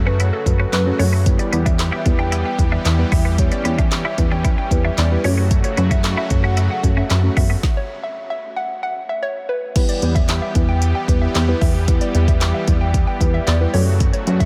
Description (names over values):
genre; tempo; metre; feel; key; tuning
dance-pop; 113 BPM; 4/4; straight; E dorian; A4 = 441 Hz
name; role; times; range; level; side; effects
deep mellow chord stab; accompaniment; 0.0-14.5 s; F#3 to E5; -29 LUFS; equal; chorus, sidechain pumping
filtered supersaw swell; sustained chords; 0.0-14.5 s; C#3 to G4; -29 LUFS; equal; sidechain pumping
plucky analog bass; bass; 0.0-14.5 s; E2 to F#2; -20 LUFS; equal; sidechain pumping
hollow square pluck; melody; 0.1-14.5 s; A4 to G5; -29 LUFS; equal; chorus, sidechain pumping, diffuse ambient delay
twelve-string electric guitar; riff; 0.1-7.6 s; B3 to E4; -31 LUFS; equal; subtle chorus
deep house drum kit; drums; 0.2-14.5 s; crash cymbal, handclaps, hi-hat, kick drum, snare drum; -21 LUFS; equal; none
room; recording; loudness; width
light reverb, digital ambience; none; -18 LUFS; mono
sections
0.0-9.8 A section; 9.8-14.5 A section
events
drop 0.0-9.8, 9.8-14.5; stop 7.6-9.8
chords
0.0 F#m; 1.3 Em; 5.2 F#m; 9.8 Em; 13.7 F#m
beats
0.20 0.73 | 1.26 1.79 2.32 2.85 | 3.38 3.92 4.45 4.98 | 5.51 6.04 6.57 7.10 | 7.63 8.16 8.70 9.23 | 9.76 10.29 10.82 11.35 | 11.88 12.41 12.94 13.47 | 14.01